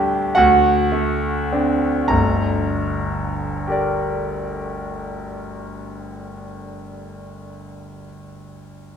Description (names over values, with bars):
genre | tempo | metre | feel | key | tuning
classical, romantic nocturne for solo piano | 38 BPM (dotted quarters) | 9/8 | rubato | G minor | A4 = 436 Hz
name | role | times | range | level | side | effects
warm concert grand piano | solo | 0.0-9.0 s | G1 to Bb5 | -19 LUFS | equal | none
room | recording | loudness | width
wet recital hall reverb, RT60 1.5 s | minimal, uncompressed stereo recording | -17 LUFS | side -7 dB against mid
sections
0.0-2.1 A section; 2.1-6.8 B section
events
slowing down 0.0-2.1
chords
0.4 D7; 2.1 Gm